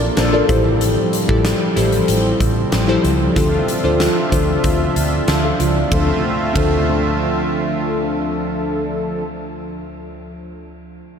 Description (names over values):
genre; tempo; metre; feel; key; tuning
1980s-style pop; 94 BPM; 4/4; straight; D minor; A4 = 440 Hz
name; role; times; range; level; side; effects
glassy digital keys; accompaniment; 0.0-11.0 s; D2 to A5; -21 LUFS; left 2 dB; chorus
brassy analog pad; sustained chords; 0.0-9.2 s; D3 to E5; -22 LUFS; right 1 dB; chorus
direct-recorded clean electric guitar; riff; 0.0-0.7 s; none; -33 LUFS; right 2 dB; none
vintage muted fingered electric bass; bass; 0.0-9.9 s; A1 to D2; -20 LUFS; equal; none
mellow synth brass; stabs; 0.2-0.4, 5.9-9.2 s; F3 to A4; -24 LUFS; left 1 dB; chorus, tape echo
huge arena drum kit; drums; 0.2-6.7 s; hi-hat, kick drum, ride cymbal, snare drum; -21 LUFS; equal; none
room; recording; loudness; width
wet cathedral reverb, RT60 5.3 s; dreamy mix soaked in reverb; -15 LUFS; side -7 dB against mid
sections
0.0-5.9 A section; 5.9-8.5 B section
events
synth keys fill 0.0-0.8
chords
0.5 Am7; 3.4 Dm7